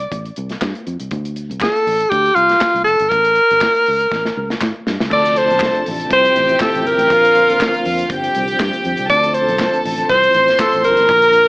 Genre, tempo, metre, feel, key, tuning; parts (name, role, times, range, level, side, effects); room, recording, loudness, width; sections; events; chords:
disco; 120 BPM; 4/4; straight; D minor; A4 = 440 Hz
clear alto saxophone; melody; 0.0-11.5 s; F4 to D5; -12 LUFS; equal
fingered electric bass; bass; 0.0-11.5 s; F1 to A2; -25 LUFS; equal
modern studio drum kit; drums; 0.0-11.5 s; crash cymbal, hi-hat, kick drum, snare drum; -24 LUFS; equal
group handclap; percussion; 0.6-10.7 s; -25 LUFS; left 1 dB
clear studio string section; second line; 5.1-11.5 s; F4 to C6; -20 LUFS; equal
percussive tonewheel organ; sustained chords; 5.1-11.5 s; C3 to E4; -24 LUFS; equal; chorus vibrato, fast rotary speaker
light reverb, small room ambience; AM radio sound; -12 LUFS; side -26 dB against mid
0.0-5.1 A section; 5.1-11.5 B section
drum fill 4.1-5.1
0.0 G9sus4; 1.1 Dm7; 3.1 A7b9; 5.1 Dm7; 6.1 Fmaj7; 7.1 Bbmaj7; 8.1 G7sus4; 9.1 Dm7; 10.1 Fmaj7